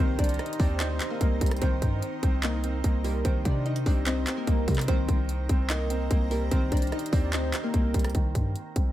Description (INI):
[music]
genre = hip hop, trap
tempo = 147 BPM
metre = 4/4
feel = half-time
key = C minor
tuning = A4 = 440 Hz
[part]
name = glassy wavetable pluck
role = melody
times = 0.0-8.1 s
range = Bb3 to Eb5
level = -32 LUFS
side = left 2 dB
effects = chorus, analog delay
[part]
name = clear grand piano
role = accompaniment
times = 0.0-8.9 s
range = Eb3 to Eb4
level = -34 LUFS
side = right 4 dB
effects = low-pass filter, analog delay
[part]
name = granular cloud pad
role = sustained chords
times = 0.0-8.1 s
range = Eb4 to Bb5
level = -40 LUFS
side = equal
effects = built-in reverb
[part]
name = hard-hitting 808-style bass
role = bass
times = 0.0-8.9 s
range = C2 to C3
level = -28 LUFS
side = equal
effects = none
[part]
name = trap drum kit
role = drums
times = 0.2-8.9 s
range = handclaps, hi-hat, kick drum, rim click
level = -27 LUFS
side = equal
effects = none
[sound]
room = digital ambience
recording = echo-heavy mix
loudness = -24 LUFS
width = side -14 dB against mid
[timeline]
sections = 0.0-8.1 A section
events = none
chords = 0.0 Cm7; 8.1 Cm